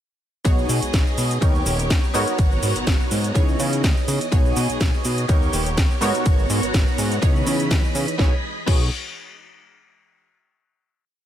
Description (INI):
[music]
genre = filtered disco house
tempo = 124 BPM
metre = 4/4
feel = swing 55% on 16ths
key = B major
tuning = A4 = 438 Hz
[part]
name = funky polysynth comp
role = accompaniment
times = 0.4-8.9 s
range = B3 to C#5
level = -26 LUFS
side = right 1 dB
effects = chorus, phaser, sidechain pumping
[part]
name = string machine, full ensemble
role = sustained chords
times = 0.5-8.4 s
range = E3 to B5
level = -28 LUFS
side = equal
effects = ensemble chorus, sidechain pumping
[part]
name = fat analog bass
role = bass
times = 0.5-8.9 s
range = D#1 to C#3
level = -24 LUFS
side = equal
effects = sidechain pumping
[part]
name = electronic kick drum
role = drums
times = 0.5-8.8 s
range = none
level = -19 LUFS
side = equal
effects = none
[part]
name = house drum kit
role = drums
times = 0.5-8.8 s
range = cabasa, crash cymbal, hi-hat, ride cymbal, snare drum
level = -27 LUFS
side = equal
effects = sidechain pumping on hats, sidechain pumping on cymbals, sidechain pumping on perc
[sound]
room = little or no reverb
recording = none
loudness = -18 LUFS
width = side -11 dB against mid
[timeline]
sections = 0.5-8.2 drop; 8.2-10.1 final chord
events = drop 0.5-8.2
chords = 0.5 B6; 1.4 D#7b13; 2.1 G#m11; 3.4 C#m9; 4.3 B6; 5.3 D#7b13; 6.0 G#m11; 7.2 C#m9; 8.2 B6